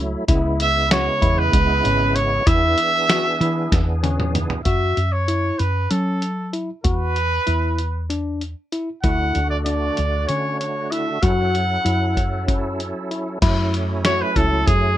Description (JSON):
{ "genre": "progressive instrumental, band music in an uneven meter", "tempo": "192 BPM (eighths)", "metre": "7/8", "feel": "straight", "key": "F# minor", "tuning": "A4 = 438 Hz", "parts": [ { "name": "bright tonewheel organ", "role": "accompaniment", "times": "0.0-4.6, 9.0-15.0 s", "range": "C#3 to A4", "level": "-27 LUFS", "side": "right 2 dB", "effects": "chorus vibrato, slow rotary speaker" }, { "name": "woody fretless electric bass", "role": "bass", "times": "0.0-15.0 s", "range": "G#1 to F#3", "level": "-22 LUFS", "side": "equal", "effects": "wide subtle chorus" }, { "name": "barky tine electric piano", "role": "arpeggios", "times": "0.3-14.7 s", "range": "C#4 to F#4", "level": "-25 LUFS", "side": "left 3 dB", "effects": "overdrive, phaser" }, { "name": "lo-fi sampler-style drum kit", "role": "drums", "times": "0.3-14.8 s", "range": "crash cymbal, hi-hat, kick drum, snare drum, toms", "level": "-21 LUFS", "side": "equal", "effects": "none" }, { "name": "clear trumpet", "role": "melody", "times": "0.6-15.0 s", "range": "G#4 to F#5", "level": "-21 LUFS", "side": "right 1 dB", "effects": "none" } ], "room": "little or no reverb", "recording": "none", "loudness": "-18 LUFS", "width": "side -12 dB against mid", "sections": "0.0-4.7 A section; 4.7-13.4 B section; 13.4-15.0 C section", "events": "drum fill 3.7-4.7; trumpet solo 13.4-15.0", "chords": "0.3 C#m7; 2.5 E7; 4.7 F#m7; 6.8 E5; 9.0 Dmaj7; 11.2 F#m7", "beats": "| 0.28 0.59 0.91 1.22 1.53 1.84 2.16 | 2.47 2.78 3.09 3.41 3.72 4.03 4.34 | 4.66 4.97 5.28 5.59 5.91 6.22 6.53 | 6.85 7.16 7.47 7.79 8.10 8.41 8.73 | 9.04 9.35 9.66 9.98 10.29 10.61 10.92 | 11.23 11.54 11.86 12.17 12.48 12.80 13.11 | 13.42 13.73 14.05 14.36 14.67" }